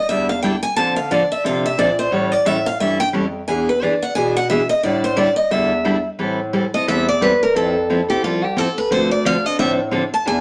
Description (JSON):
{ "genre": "acoustic string swing (jazz manouche)", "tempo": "177 BPM", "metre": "4/4", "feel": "swing 59% on 8ths", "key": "A minor from 6.2 s", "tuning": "A4 = 436 Hz", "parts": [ { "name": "picked steel-string acoustic guitar", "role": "second line", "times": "0.0-6.1 s", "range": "B4 to A5", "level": "-21 LUFS", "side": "equal", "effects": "none" }, { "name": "picked steel-string acoustic guitar", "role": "accompaniment", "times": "0.1-10.4 s", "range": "D3 to A4", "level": "-23 LUFS", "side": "equal", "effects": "none" }, { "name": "warm bass clarinet", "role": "bass", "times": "0.1-10.4 s", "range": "C2 to D3", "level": "-27 LUFS", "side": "equal", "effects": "none" }, { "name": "picked steel-string acoustic guitar", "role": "melody", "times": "6.7-10.4 s", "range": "F4 to A5", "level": "-20 LUFS", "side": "equal", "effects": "none" } ], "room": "wet studio reverb, RT60 0.6 s", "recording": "none", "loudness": "-18 LUFS", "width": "mono", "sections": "0.0-6.2 A section; 6.2-10.4 A section", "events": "steel-string acoustic guitar solo 0.0-6.2, 6.2-10.4", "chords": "0.0 A7sus4; 0.8 Dm7; 2.1 A7; 3.5 E7; 4.8 A7sus4; 6.2 Am7; 7.5 Fmaj7; 8.9 Dm7" }